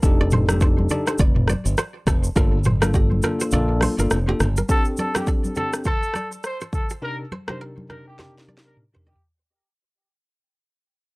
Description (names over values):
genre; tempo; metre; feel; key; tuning
afrobeats; 103 BPM; 4/4; swing 58% on 16ths; unclear; A4 = 440 Hz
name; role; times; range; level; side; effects
bell-like tine electric piano; accompaniment; 0.0-9.1 s; C3 to Bb4; -26 LUFS; left 1 dB; none
modern bright fingered electric bass; bass; 0.0-4.6 s; F1 to Bb1; -21 LUFS; equal; none
afro-pop drum kit; drums; 0.0-9.3 s; hi-hat, kick drum, rim click, shaker, snare drum, toms; -21 LUFS; equal; overdrive
kora; riff; 0.2-9.2 s; G4 to Eb5; -30 LUFS; right 2 dB; tape echo
congas; percussion; 0.3-9.2 s; none; -30 LUFS; equal; none
warm trumpet; melody; 4.7-9.2 s; G4 to C5; -27 LUFS; equal; none
room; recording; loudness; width
little or no reverb; dry, gritty hardware recording; -18 LUFS; side -25 dB against mid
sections
0.0-4.7 A section; 4.7-9.4 B section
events
kick muted 3.5-4.7; fade-out 4.7-9.4; drum fill 8.2-9.4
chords
0.0 F13; 2.4 Gm7; 4.7 D7sus4; 7.0 Cm9